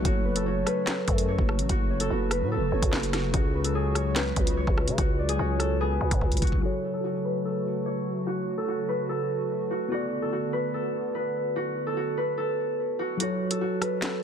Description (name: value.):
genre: hip hop, drill.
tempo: 146 BPM.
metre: 4/4.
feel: half-time.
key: F# minor.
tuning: A4 = 440 Hz.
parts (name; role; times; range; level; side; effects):
concert harp; melody; 0.0-14.2 s; F#4 to C#5; -29 LUFS; right 1 dB; low-pass filter, ping-pong delay.
mellow tine electric piano; accompaniment; 0.0-14.2 s; C#3 to D5; -33 LUFS; left 3 dB; slow stereo tremolo, low-pass filter.
hollow soft pad; sustained chords; 0.0-13.2 s; C#3 to F#4; -35 LUFS; left 1 dB; chorus, low-pass filter.
growling 808-style bass; bass; 0.0-6.6 s; F#1 to C#3; -29 LUFS; equal; none.
drill drum kit; drums; 0.1-6.6, 13.2-14.1 s; handclaps, hi-hat, kick drum, rim click, snare drum; -26 LUFS; equal; none.
soft octave-layered synth lead; second line; 0.2-6.6 s; A4 to D5; -37 LUFS; equal; chorus, ping-pong delay.
room: little or no reverb.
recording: dense, heavily limited modern master.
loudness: -24 LUFS.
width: side -8 dB against mid.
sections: 0.0-6.6 A section; 6.6-13.2 B section; 13.2-14.2 C section.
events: drum fill 6.2-6.6; filter sweep 6.6-13.2; kick muted 13.2-14.2.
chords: 0.1 F#m; 3.3 C#sus4; 6.6 F#m; 9.9 Bm7; 13.2 F#m.